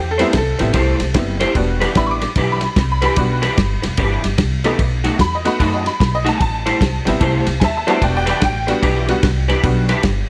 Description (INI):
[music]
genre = electric blues shuffle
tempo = 148 BPM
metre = 4/4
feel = swing 63% on 8ths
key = E minor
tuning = A4 = 440 Hz
[part]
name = honky-tonk upright piano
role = accompaniment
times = 0.0-9.9 s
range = G3 to D6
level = -23 LUFS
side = equal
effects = none
[part]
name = upright bass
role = bass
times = 0.0-10.2 s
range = E1 to F#2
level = -22 LUFS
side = equal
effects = none
[part]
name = electric guitar through a small old amp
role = riff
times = 0.2-10.1 s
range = B2 to C5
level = -23 LUFS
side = equal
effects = ensemble chorus
[part]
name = warm soul drum kit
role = drums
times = 0.2-10.2 s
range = kick drum, ride cymbal, snare drum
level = -22 LUFS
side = equal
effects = none
[sound]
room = light reverb, small room ambience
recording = none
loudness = -17 LUFS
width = mono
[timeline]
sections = 0.0-10.3 A section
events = none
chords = 0.0 Am7; 1.6 Em7; 4.8 B7; 6.4 Am7; 8.0 Em7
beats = 0.35 0.75 1.16 | 1.56 1.96 2.37 2.77 | 3.17 3.58 3.98 4.39 | 4.79 5.20 5.60 6.00 | 6.41 6.81 7.21 7.62 | 8.02 8.43 8.83 9.23 | 9.64 10.04